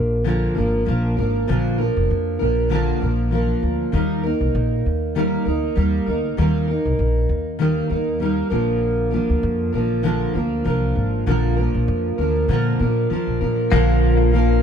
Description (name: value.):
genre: acoustic pop.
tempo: 98 BPM.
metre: 4/4.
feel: swing 55% on 16ths.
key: unclear.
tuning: A4 = 440 Hz.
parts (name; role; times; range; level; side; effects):
fingerpicked steel-string acoustic guitar; accompaniment; 0.0-14.6 s; Bb2 to Bb4; -20 LUFS; equal; double-tracked left and right.
upright bass; bass; 0.0-14.6 s; F1 to Bb2; -21 LUFS; equal; none.
direct-recorded clean electric guitar; second line; 13.7-14.6 s; Bb3; -23 LUFS; left 7 dB; tape echo.
room: small room ambience.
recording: dry, close 1970s-style studio recording.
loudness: -18 LUFS.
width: side -8 dB against mid.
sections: 0.0-13.7 A section.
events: none.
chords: 0.0 Bb; 3.9 Eb; 8.5 Bb.